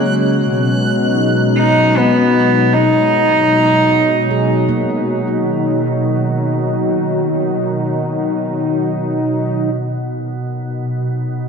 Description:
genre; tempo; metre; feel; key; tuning
ambient; 77 BPM; 3/4; straight; B major; A4 = 441 Hz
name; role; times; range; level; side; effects
warm analog pad; sustained chords; 0.0-11.5 s; B2 to A#4; -16 LUFS; left 1 dB; wide subtle chorus
organ-like drone; drone; 3.8-11.5 s; B2; -22 LUFS; right 2 dB; ensemble chorus, built-in reverb
warm cello; melody; 1.6-4.7 s; B3 to D#4; -14 LUFS; right 1 dB; tape echo
handpan; arpeggios; 2.0-7.3 s; A#3 to D#5; -27 LUFS; right 4 dB; tape echo
room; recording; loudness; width
wet concert hall reverb, RT60 1.9 s; cassette tape; -13 LUFS; side -6 dB against mid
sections
0.4-9.7 A section; 9.7-11.5 B section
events
fade-in on handpan 0.4-9.7; fade-in on synth drone 0.4-9.7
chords
0.4 B6; 5.1 Bmaj7

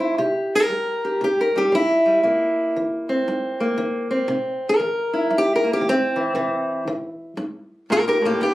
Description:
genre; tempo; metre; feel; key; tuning
acoustic country blues, solo or duo; 117 BPM; 4/4; swing 64% on 8ths; C mixolydian; A4 = 440 Hz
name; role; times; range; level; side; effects
fingerpicked old ladder-braced acoustic guitar; solo; 0.0-8.5 s; G2 to C5; -19 LUFS; equal; none
room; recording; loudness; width
moderate studio reverb, RT60 0.6 s; recorded on a phone in the room, club reverb; -18 LUFS; side -16 dB against mid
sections
0.2-8.5 A section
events
steel-string acoustic guitar solo 0.2-8.5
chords
0.2 C7

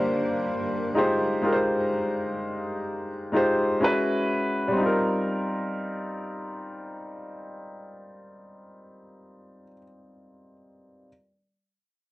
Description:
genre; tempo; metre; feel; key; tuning
R&B; 63 BPM; 4/4; swing 58% on 16ths; Eb major; A4 = 440 Hz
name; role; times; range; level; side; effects
warm grand piano; accompaniment; 0.0-11.1 s; G3 to C5; -24 LUFS; equal; none
granular cloud pad; sustained chords; 0.0-0.9 s; G3 to E#5; -36 LUFS; right 1 dB; built-in reverb
room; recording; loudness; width
moderate studio ambience, RT60 0.5 s; home recording on cassette; -23 LUFS; side -18 dB against mid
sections
0.0-4.8 A section; 4.8-8.6 B section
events
none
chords
0.0 Gm7; 1.0 Fm9; 3.8 E69; 4.8 Eb69

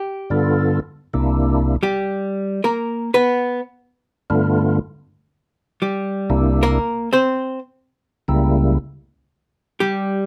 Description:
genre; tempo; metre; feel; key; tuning
jazz; 120 BPM; 4/4; swing 67% on 8ths; unclear; A4 = 440 Hz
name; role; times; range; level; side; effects
archtop guitar, miked and amplified; accompaniment; 0.0-10.3 s; G3 to C5; -21 LUFS; equal; none
percussive tonewheel organ; melody; 0.3-8.8 s; C2 to A4; -18 LUFS; equal; slow rotary speaker, overdrive, chorus vibrato
room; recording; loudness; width
little or no reverb; close, detailed microphones; -20 LUFS; mono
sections
0.0-10.3 A section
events
hollow-body jazz guitar solo 0.0-10.3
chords
0.0 G9; 0.8 C9; 2.8 G9; 4.8 C9; 6.8 C#dim7; 8.8 N.C.

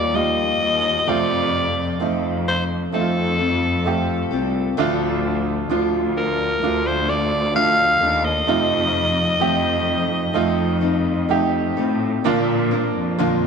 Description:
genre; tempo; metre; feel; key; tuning
pop ballad; 65 BPM; 4/4; straight; unclear; A4 = 440 Hz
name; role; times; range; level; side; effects
raspy alto saxophone; melody; 0.0-11.3 s; A4 to F5; -21 LUFS; left 1 dB; tape echo
clear concert grand piano; accompaniment; 0.0-13.5 s; A2 to G4; -23 LUFS; right 9 dB; none
picked steel-string acoustic guitar; arpeggios; 0.0-13.5 s; Bb2 to Bb4; -25 LUFS; left 10 dB; none
rich symphonic cello section; bass; 0.0-13.5 s; C2 to Bb2; -24 LUFS; left 1 dB; none
room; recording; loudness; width
wet echo chamber reverb, RT60 1.4 s, small room ambience; 1960s-style stereo with parts hard left and right; -17 LUFS; side -6 dB against mid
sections
0.0-12.2 A section; 12.2-13.5 B section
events
none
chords
0.0 Ebadd9; 1.1 F; 4.8 Dm; 8.5 F7; 12.2 Bb

